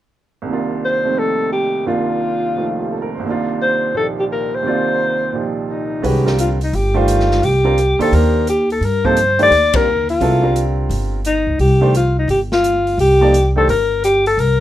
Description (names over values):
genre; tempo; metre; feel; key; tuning
modal jazz; 173 BPM; 4/4; swing 65% on 8ths; C dorian; A4 = 440 Hz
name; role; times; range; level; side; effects
clear baby grand piano; accompaniment; 0.4-13.7 s; C2 to D5; -20 LUFS; right 4 dB; none
mellow alto saxophone; melody; 0.9-14.6 s; Eb4 to D5; -16 LUFS; left 1 dB; none
upright bass; bass; 6.0-14.6 s; G1 to G2; -17 LUFS; equal; none
swinging big-band drum kit; drums; 6.0-14.5 s; hi-hat, kick drum, ride cymbal, snare drum; -28 LUFS; equal; none
room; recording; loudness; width
light reverb; minimal, uncompressed stereo recording; -14 LUFS; side -13 dB against mid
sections
0.5-6.0 A section; 6.0-14.6 B section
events
band accent 9.7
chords
0.5 Cm11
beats
| 0.47 0.81 1.16 1.51 | 1.86 2.21 2.56 2.90 | 3.25 3.60 3.95 4.30 | 4.64 4.99 5.34 5.69 | 6.04 6.38 6.73 7.08 | 7.43 7.77 8.12 8.47 | 8.81 9.16 9.51 9.86 | 10.20 10.55 10.90 11.24 | 11.59 11.94 12.29 12.63 | 12.98 13.33 13.67 14.02 | 14.37